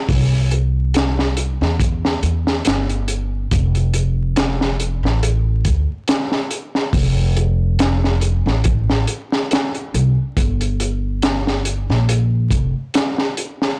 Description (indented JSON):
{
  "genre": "trip hop",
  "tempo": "70 BPM",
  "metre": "4/4",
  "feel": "swing 54% on 16ths",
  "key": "unclear",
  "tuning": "A4 = 437 Hz",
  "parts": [
    { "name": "upright bass", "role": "bass", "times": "0.1-12.7 s", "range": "F1 to E2", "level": "-20 LUFS", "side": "equal", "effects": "none" },
    { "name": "crunchy breakbeat drum kit", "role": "drums", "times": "0.1-13.8 s", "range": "hi-hat, kick drum, snare drum", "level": "-21 LUFS", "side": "equal", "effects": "none" }
  ],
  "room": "little or no reverb",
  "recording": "blown-out, overdriven recording, vinyl crackle, overdrive",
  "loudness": "-18 LUFS",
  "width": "mono",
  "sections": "0.0-13.8 A section",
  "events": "none",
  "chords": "none",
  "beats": "| 0.08 0.94 1.80 2.65 | 3.51 4.37 5.23 6.08 | 6.94 7.80 8.65 9.51 | 10.37 11.23 12.08 12.94"
}